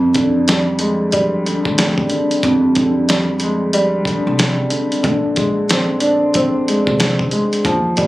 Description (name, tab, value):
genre	hip hop, boom-bap hip-hop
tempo	92 BPM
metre	4/4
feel	swing 62% on 16ths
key	F dorian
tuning	A4 = 440 Hz
part	dark upright piano	accompaniment	0.0-8.1 s	F2 to D4	-15 LUFS	equal	cassette tape, high-pass filter, low-pass filter
part	upright bass	bass	0.0-8.1 s	Bb1 to F2	-23 LUFS	equal	none
part	boom bap sampler-style drum kit	drums	0.1-8.1 s	hi-hat, kick drum, snare drum	-18 LUFS	equal	none
room	light reverb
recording	recorded on a phone in the room, club reverb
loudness	-14 LUFS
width	side -17 dB against mid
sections	0.0-8.1 A section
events	none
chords	0.0 Fm69; 5.0 Bb9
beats	0.47 1.13 1.78 | 2.43 3.08 3.74 4.39 | 5.04 5.69 6.34 7.00 | 7.65